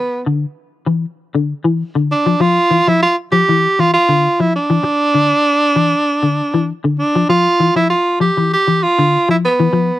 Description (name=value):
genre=afrobeat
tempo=98 BPM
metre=4/4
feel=swing 54% on 16ths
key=unclear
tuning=A4 = 440 Hz
part: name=bright tenor saxophone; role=melody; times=0.0-10.0 s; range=B3 to G4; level=-13 LUFS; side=right 2 dB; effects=none
part: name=clean electric guitar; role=arpeggios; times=0.3-9.9 s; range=D3 to F3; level=-16 LUFS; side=left 3 dB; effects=ensemble chorus
room=little or no reverb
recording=dry, close 1970s-style studio recording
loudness=-12 LUFS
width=side -15 dB against mid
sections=0.0-10.0 A section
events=none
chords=0.0 Dmadd9